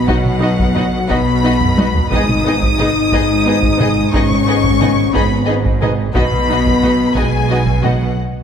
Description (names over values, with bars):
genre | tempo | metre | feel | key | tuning
cinematic, epic orchestral film score | 59 BPM (dotted quarters) | 6/8 | straight | G# minor | A4 = 440 Hz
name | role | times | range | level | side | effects
rich symphonic violin section | melody | 0.0-8.2 s | F#5 to D#6 | -20 LUFS | left 3 dB | none
mellow French horn section | sustained chords | 0.0-8.2 s | F#3 to D#4 | -18 LUFS | left 4 dB | none
rich symphonic violin section | second line | 0.1-7.9 s | F#4 to D#5 | -23 LUFS | left 2 dB | none
rich symphonic viola section | accompaniment | 0.1-7.9 s | B3 to D#4 | -23 LUFS | right 1 dB | none
clear symphonic cello section | bass | 0.1-8.1 s | G#2 to B2 | -20 LUFS | right 3 dB | none
rich symphonic double bass section | bass | 0.1-8.1 s | G#1 to B1 | -21 LUFS | right 4 dB | none
taiko ensemble | drums | 0.1-8.2 s | none | -19 LUFS | equal | none
room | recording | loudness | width
wet concert hall reverb, RT60 1.9 s | none | -12 LUFS | side -8 dB against mid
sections
0.0-8.4 A section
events
drum fill 1.6-2.1; break 8.2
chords
0.0 B; 2.1 G#m; 6.2 B